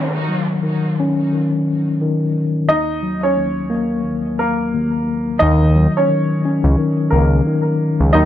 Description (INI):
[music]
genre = hip hop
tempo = 88 BPM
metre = 4/4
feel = swing 57% on 16ths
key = Eb minor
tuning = A4 = 440 Hz
[part]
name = mellow tine electric piano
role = accompaniment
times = 0.0-8.3 s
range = Eb2 to Db4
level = -17 LUFS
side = left 2 dB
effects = fast stereo tremolo, high-pass filter, low-pass filter
[part]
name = warm upright piano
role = melody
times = 2.7-8.3 s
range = Bb3 to Eb5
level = -19 LUFS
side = right 1 dB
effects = high-pass filter, low-pass filter, digital delay
[part]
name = fat analog bass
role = bass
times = 5.4-8.3 s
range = Db2 to Eb2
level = -13 LUFS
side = equal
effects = none
[sound]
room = light reverb, digital ambience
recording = lossy compression artefacts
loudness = -15 LUFS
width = side -11 dB against mid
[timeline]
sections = 0.0-8.3 A section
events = break 0.0-2.7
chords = 0.0 Ebm7; 2.7 Gb/Eb; 5.4 Ebm7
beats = 0.64 1.32 2.00 | 2.69 3.37 4.05 4.73 | 5.41 6.09 6.78 7.46 | 8.14